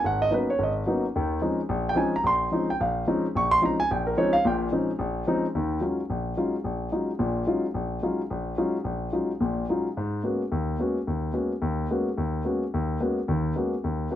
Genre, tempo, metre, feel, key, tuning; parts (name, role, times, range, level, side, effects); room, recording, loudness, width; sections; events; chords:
jazz; 218 BPM; 4/4; swing 61% on 8ths; Eb minor from 5.5 s; A4 = 440 Hz
warm concert grand piano; solo; 0.0-14.2 s; G#1 to C#6; -24 LUFS; left 1 dB
moderate club reverb, RT60 0.5 s; -24 LUFS; side -11 dB against mid
0.0-5.5 A section; 5.5-14.2 B section
0.0 C#13sus4; 1.1 D#13sus4; 5.5 Ebm11; 10.0 Abm11